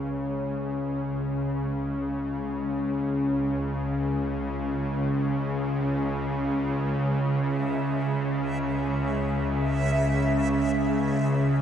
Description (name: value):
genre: dark ambient drone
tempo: free time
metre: none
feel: none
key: C# minor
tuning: A4 = 440 Hz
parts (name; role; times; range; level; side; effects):
- bowed-like drone; drone; 0.0-11.6 s; C#2 to C#3; -24 LUFS; equal; built-in reverb
- backwards swelling texture; texture; 7.6-11.6 s; E5; -33 LUFS; right 3 dB; built-in reverb, shimmer reverb
room: wet huge ambient reverb, RT60 8.2 s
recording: dark, warm production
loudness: -24 LUFS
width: side -9 dB against mid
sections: 0.0-11.6 A section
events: none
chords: 0.0 C#m